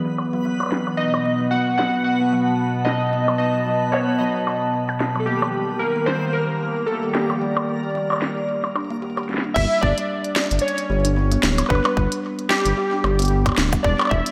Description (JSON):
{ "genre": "IDM", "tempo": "112 BPM", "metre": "4/4", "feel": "swing 56% on 16ths", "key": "unclear", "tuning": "A4 = 439 Hz", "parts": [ { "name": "hollow soft pad", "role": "sustained chords", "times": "0.0-9.6 s", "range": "B2 to A5", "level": "-26 LUFS", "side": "equal", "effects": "chorus" }, { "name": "backwards swelling texture", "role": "texture", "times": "0.0-9.6 s", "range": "Bb3 to B4", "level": "-36 LUFS", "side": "equal", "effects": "built-in reverb" }, { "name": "glitchy drum kit", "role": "drums", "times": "0.1-14.3 s", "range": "crash cymbal, hi-hat, percussion blips, shaker, snare drum", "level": "-28 LUFS", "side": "equal", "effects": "low-pass filter on perc, low-pass filter on hats, low-pass filter on snare, low-pass filter on cymbals, delay" }, { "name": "kalimba", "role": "arpeggios", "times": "0.3-13.8 s", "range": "F3 to G4", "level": "-29 LUFS", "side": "equal", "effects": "vintage 12-bit sampler grit, tape echo" }, { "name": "warbly lo-fi synth keys", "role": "melody", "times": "1.0-14.3 s", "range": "G4 to F#5", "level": "-26 LUFS", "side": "equal", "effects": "chorus, delay" }, { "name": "dark detuned saw bass", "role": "bass", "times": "9.6-14.2 s", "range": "D1 to G1", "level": "-23 LUFS", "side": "equal", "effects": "none" }, { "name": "electronic kick drum", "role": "drums", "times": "9.6-14.2 s", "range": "none", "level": "-25 LUFS", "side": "equal", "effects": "none" } ], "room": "wet lush hall reverb, RT60 2.1 s", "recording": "dreamy mix soaked in reverb", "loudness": "-21 LUFS", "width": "mono", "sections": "0.0-9.6 A section; 9.6-14.3 B section", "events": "filter sweep on kalimba 0.0-9.6", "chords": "0.0 E7; 1.0 B7; 5.3 Ebmaj7; 9.6 G" }